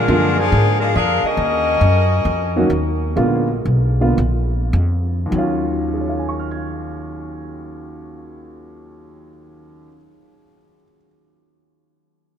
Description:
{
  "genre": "jazz, big band swing",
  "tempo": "98-140 BPM",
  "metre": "4/4",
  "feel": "swing 68% on 8ths",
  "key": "Eb minor",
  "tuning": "A4 = 441 Hz",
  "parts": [
    { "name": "warm saxophone section", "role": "melody", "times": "0.0-2.7 s", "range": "F3 to F5", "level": "-19 LUFS", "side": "left 2 dB", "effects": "none" },
    { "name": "upright bass", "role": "bass", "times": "0.0-9.9 s", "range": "Bb1 to Ab2", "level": "-19 LUFS", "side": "equal", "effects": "none" },
    { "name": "warm baby grand piano", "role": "accompaniment", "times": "0.1-11.1 s", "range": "Eb2 to Ab6", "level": "-22 LUFS", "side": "right 1 dB", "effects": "none" }
  ],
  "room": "wet cathedral reverb, RT60 4.8 s",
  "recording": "in a vast, echoing space",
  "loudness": "-15 LUFS",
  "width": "side -8 dB against mid",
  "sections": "0.0-3.2 A section; 3.2-5.3 B section; 5.3-10.2 C section",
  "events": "slowing down 1.4-5.3",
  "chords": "0.0 Bb7; 1.4 Ebm7; 3.2 Bb7b9; 5.3 Ebm7"
}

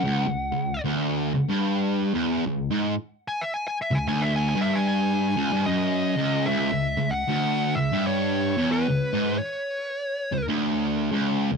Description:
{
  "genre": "metal",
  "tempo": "75 BPM",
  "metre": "4/4",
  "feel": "swing 61% on 8ths",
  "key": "C# minor",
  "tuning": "A4 = 441 Hz",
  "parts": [
    { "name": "fuzz lead guitar", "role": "melody", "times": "0.0-10.4 s", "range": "B4 to G#5", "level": "-28 LUFS", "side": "left 1 dB", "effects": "distortion, tape echo" },
    { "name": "fuzz guitar", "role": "riff", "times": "0.0-11.6 s", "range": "C#2 to G#2", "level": "-23 LUFS", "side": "equal", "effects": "distortion" }
  ],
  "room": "light reverb",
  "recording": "none",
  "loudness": "-22 LUFS",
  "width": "side -5 dB against mid",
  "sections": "0.0-6.5 A section; 6.5-11.6 B section",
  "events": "lead electric guitar solo 0.0-6.5",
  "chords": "0.0 C#5; 6.5 N.C."
}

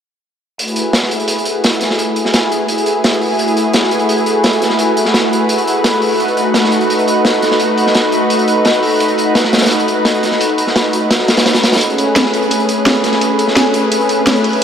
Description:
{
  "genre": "liquid drum and bass",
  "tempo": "171 BPM",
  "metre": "4/4",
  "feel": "straight",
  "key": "F# dorian",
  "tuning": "A4 = 439 Hz",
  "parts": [
    { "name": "lush unison pad", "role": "sustained chords", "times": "0.6-14.6 s", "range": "A3 to B4", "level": "-13 LUFS", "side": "equal", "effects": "chorus" },
    { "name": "crunchy breakbeat drum kit", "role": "drums", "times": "0.6-14.6 s", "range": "hi-hat, snare drum", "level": "-16 LUFS", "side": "equal", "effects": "high-pass filter on hats, high-pass filter on snare, high-pass filter on room" },
    { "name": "drum and bass drum kit", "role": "drums", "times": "0.6-14.6 s", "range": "hi-hat, snare drum", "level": "-18 LUFS", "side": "equal", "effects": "low-pass filter on hats, low-pass filter on snare" }
  ],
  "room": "wet huge ambient reverb, RT60 4.2 s",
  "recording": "dreamy mix soaked in reverb",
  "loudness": "-11 LUFS",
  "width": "side -8 dB against mid",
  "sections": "0.6-14.6 A section",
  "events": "none",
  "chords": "0.6 F#m11; 6.2 B7; 11.8 Amaj9"
}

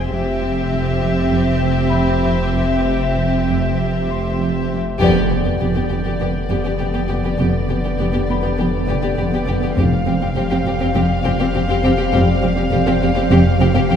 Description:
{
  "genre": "cinematic, suspense film score",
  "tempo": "101 BPM",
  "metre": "4/4",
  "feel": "straight",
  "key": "unclear",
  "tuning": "A4 = 441 Hz",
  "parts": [
    { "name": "warm chamber violin section", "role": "melody", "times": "0.0-14.0 s", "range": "D5 to F5", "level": "-25 LUFS", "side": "left 3 dB", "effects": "none" },
    { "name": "warm chamber violin section", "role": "second line", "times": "0.0-14.0 s", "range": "G4", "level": "-24 LUFS", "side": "left 3 dB", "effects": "none" },
    { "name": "warm chamber viola section", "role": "accompaniment", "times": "0.0-14.0 s", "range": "B3 to C4", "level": "-23 LUFS", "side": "right 2 dB", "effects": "none" },
    { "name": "dark chamber cello section", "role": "bass", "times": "0.0-14.0 s", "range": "F2", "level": "-24 LUFS", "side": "right 4 dB", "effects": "none" },
    { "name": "warm chamber double bass section", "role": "bass", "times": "0.0-14.0 s", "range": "F1", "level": "-24 LUFS", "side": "right 2 dB", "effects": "none" },
    { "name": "saturated sub bass", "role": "drone", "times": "0.0-14.0 s", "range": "F1", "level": "-26 LUFS", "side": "left 1 dB", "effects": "none" },
    { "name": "warm chamber cello section", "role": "riff", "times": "0.1-14.0 s", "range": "F2 to F3", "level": "-22 LUFS", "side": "equal", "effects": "none" },
    { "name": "concert harp", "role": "texture", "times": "1.9-10.7 s", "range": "Ab4 to C6", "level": "-33 LUFS", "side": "left 3 dB", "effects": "none" },
    { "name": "warm French horn section", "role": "sustained chords", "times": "5.0-14.0 s", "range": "D3 to C4", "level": "-24 LUFS", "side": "equal", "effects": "none" },
    { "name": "timpani", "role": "percussion", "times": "5.0-5.9, 9.8-10.6 s", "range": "F2", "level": "-25 LUFS", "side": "equal", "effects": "none" },
    { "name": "impact", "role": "sound effects", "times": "5.0-7.4 s", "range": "none", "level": "-27 LUFS", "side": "left 1 dB", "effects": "none" }
  ],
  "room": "wet scoring stage reverb, RT60 2.0 s",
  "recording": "heard from further back in the room",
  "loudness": "-15 LUFS",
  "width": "side -8 dB against mid",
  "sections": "0.0-5.0 A section; 5.0-14.0 B section",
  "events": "band accent 5.0-5.6; impact 5.0-7.4",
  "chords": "0.1 C/F; 5.0 G/F; 9.8 Fsus2"
}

